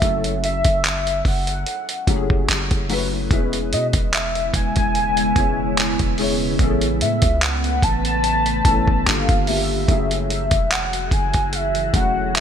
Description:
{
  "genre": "contemporary R&B",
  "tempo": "73 BPM",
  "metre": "4/4",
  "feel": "swing 54% on 16ths",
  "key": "unclear",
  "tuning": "A4 = 441 Hz",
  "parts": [
    { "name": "warm velvety synth lead", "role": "melody", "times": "0.0-12.4 s", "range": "D#5 to A5", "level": "-23 LUFS", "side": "equal", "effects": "chorus, ping-pong delay" },
    { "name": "felt-muted upright piano", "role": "accompaniment", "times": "0.0-12.4 s", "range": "F#3 to C#5", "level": "-26 LUFS", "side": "left 5 dB", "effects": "ensemble chorus" },
    { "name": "long sustained 808-style bass", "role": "bass", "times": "0.0-12.4 s", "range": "E1 to B2", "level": "-25 LUFS", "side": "equal", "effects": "none" },
    { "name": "dusty soul sampler-style drum kit", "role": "drums", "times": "0.0-12.4 s", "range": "handclaps, hi-hat, kick drum", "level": "-20 LUFS", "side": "equal", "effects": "none" },
    { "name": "glassy FM pad", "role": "sustained chords", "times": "4.3-12.4 s", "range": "C#3 to B4", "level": "-26 LUFS", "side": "equal", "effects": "ensemble chorus, built-in reverb, sidechain pumping" }
  ],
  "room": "light reverb",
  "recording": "bright 1980s-style digital production",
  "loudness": "-17 LUFS",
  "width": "side -8 dB against mid",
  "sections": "0.0-12.4 A section",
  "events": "none",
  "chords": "0.0 F#m9; 3.3 E6; 6.6 Amaj9; 9.1 Gm9; 9.9 F#m9",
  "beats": "| 0.02 0.84 1.66 2.48 | 3.31 4.13 4.95 5.77 | 6.59 7.42 8.24 9.06 | 9.88 10.70 11.53 12.35"
}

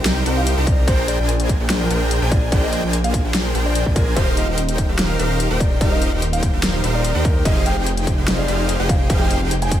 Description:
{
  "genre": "future bass",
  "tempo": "146 BPM",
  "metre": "4/4",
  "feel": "half-time",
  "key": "Eb major",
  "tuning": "A4 = 440 Hz",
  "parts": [
    { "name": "dark grand piano", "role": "melody", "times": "0.0-9.8 s", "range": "Bb4 to Ab5", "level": "-27 LUFS", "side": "left 1 dB", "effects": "sidechain pumping, ping-pong delay" },
    { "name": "supersaw chords", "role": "riff", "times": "0.0-9.8 s", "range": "D4 to Bb5", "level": "-23 LUFS", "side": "equal", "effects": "sidechain pumping" },
    { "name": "wide detuned saw bass", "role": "bass", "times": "0.0-9.8 s", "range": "Eb1 to Eb2", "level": "-20 LUFS", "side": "equal", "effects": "chorus, sidechain pumping" },
    { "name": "dubstep drum kit", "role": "drums", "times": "0.1-9.8 s", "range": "hi-hat, snare drum", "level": "-24 LUFS", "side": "left 1 dB", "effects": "none" },
    { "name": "electronic kick drum", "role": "drums", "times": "0.7-9.8 s", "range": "none", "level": "-19 LUFS", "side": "equal", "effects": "distortion" }
  ],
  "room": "little or no reverb",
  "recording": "none",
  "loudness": "-16 LUFS",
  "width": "side -11 dB against mid",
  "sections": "0.0-9.8 A section",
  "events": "none",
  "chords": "0.0 Cm7; 0.9 Bb13; 4.2 Eb69; 7.5 Fm9",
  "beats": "0.06 0.47 | 0.88 1.29 1.70 2.11 | 2.52 2.93 3.34 3.75 | 4.17 4.58 4.99 5.40 | 5.81 6.22 6.63 7.04 | 7.45 7.86 8.28 8.69 | 9.10 9.51"
}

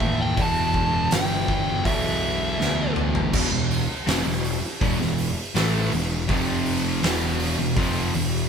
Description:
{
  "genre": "stoner and doom metal",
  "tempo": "81 BPM",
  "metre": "4/4",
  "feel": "straight",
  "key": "E phrygian",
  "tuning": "A4 = 440 Hz",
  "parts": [
    { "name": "fuzz lead guitar", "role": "melody", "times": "0.0-2.9 s", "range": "E5 to A5", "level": "-26 LUFS", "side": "equal", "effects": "distortion" },
    { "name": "high-gain distorted guitar", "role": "riff", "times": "0.0-8.4 s", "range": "E2 to A3", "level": "-30 LUFS", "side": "right 1 dB", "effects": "distortion" },
    { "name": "thick fuzz guitar", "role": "riff", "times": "0.0-8.4 s", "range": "E2 to A3", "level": "-28 LUFS", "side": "left 5 dB", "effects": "distortion" },
    { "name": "thick fuzz guitar", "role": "riff", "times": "0.0-8.4 s", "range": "E2 to A3", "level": "-29 LUFS", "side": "right 5 dB", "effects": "distortion" },
    { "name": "fuzz picked electric bass", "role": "bass", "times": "0.0-8.5 s", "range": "E1 to D#2", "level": "-28 LUFS", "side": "equal", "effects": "overdrive" },
    { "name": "oversized low-tuned drum kit", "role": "drums", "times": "0.0-8.3 s", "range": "crash cymbal, hi-hat, kick drum, snare drum, toms", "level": "-26 LUFS", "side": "right 1 dB", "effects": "none" }
  ],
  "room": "moderate studio ambience, RT60 0.5 s",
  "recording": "band playing live in one room",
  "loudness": "-20 LUFS",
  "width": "side -6 dB against mid",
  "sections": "0.0-3.3 A section; 3.3-8.5 B section",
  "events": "drum fill 2.6-3.3",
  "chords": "0.4 Em; 3.3 E5; 6.3 F5; 7.0 E5",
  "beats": "| 0.38 1.12 1.86 2.60 | 3.33 4.07 4.81 5.55 | 6.29 7.03 7.77"
}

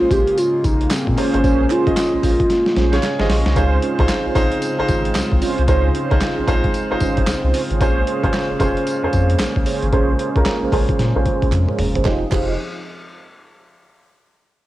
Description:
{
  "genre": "R&B, new jack swing",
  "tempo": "113 BPM",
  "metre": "4/4",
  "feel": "swing 62% on 16ths",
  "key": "unclear",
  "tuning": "A4 = 441 Hz",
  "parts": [
    { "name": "hollow clarinet-like synth lead", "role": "melody", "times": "0.0-3.0 s", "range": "C4 to G4", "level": "-18 LUFS", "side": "equal", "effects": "chorus, cassette tape" },
    { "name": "warm baby grand piano", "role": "accompaniment", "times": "0.0-12.6 s", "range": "Db4 to Eb5", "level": "-22 LUFS", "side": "right 1 dB", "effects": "low-pass filter, cassette tape" },
    { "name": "chorused pulse-width pad", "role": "sustained chords", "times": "0.0-12.3 s", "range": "Db3 to Ab4", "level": "-27 LUFS", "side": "equal", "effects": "low-pass filter, cassette tape" },
    { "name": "mellow synth brass", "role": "stabs", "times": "0.0-12.5 s", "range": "Db4 to Eb5", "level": "-25 LUFS", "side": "right 6 dB", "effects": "chorus, low-pass filter, cassette tape, tape echo" },
    { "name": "round analog bass", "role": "bass", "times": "0.0-12.6 s", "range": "F1 to Bb2", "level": "-20 LUFS", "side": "equal", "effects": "none" },
    { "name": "boom bap sampler-style drum kit", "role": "drums", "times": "0.1-12.5 s", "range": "crash cymbal, handclaps, hi-hat, kick drum, snare drum, tambourine, toms", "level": "-22 LUFS", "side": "equal", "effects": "overdrive, cassette tape" },
    { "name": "group handclap", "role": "percussion", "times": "0.9-12.6 s", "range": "none", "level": "-35 LUFS", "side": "right 6 dB", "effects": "none" }
  ],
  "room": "light reverb, digital ambience",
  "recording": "home recording on cassette",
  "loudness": "-15 LUFS",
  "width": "side -15 dB against mid",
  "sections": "0.0-3.6 A section; 3.6-12.1 B section; 12.1-14.2 C section",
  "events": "drum fill 2.5-3.6, 11.5-12.1; filter sweep 3.6-12.1",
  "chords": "0.0 Bbm9; 12.1 Fm7",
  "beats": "0.37 0.90 | 1.43 1.97 2.50 3.03 | 3.56 4.09 4.62 5.15 | 5.68 6.21 6.74 7.27 | 7.80 8.34 8.87 9.40 | 9.93 10.46 10.99 11.52 | 12.05"
}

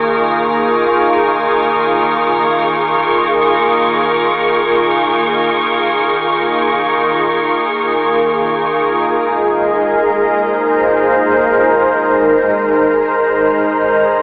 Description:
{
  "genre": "ambient",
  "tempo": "free time",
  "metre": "none",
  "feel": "none",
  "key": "Ab major",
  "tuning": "A4 = 438 Hz",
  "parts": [
    { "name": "soft additive organ-like pad", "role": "sustained chords", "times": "0.0-14.2 s", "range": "Eb3 to C5", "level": "-14 LUFS", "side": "equal", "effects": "ensemble chorus, built-in reverb, shimmer reverb" },
    { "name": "deep rumbling drone", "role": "bass", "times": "0.0-9.0 s", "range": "Eb2", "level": "-51 LUFS", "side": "equal", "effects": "none" },
    { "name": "wind-like tuned noise texture", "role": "texture", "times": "0.0-14.2 s", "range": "Bb5 to Db6", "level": "-22 LUFS", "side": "equal", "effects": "built-in reverb, shimmer reverb" }
  ],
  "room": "wet concert hall reverb, RT60 2.1 s",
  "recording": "worn, warbling old tape, cassette tape, warbly pitch drift, telephone sound",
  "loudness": "-14 LUFS",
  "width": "mono",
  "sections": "0.0-9.1 A section; 9.1-14.2 B section",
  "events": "none",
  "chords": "0.0 Eb9sus4; 9.1 Ab",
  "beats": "free time"
}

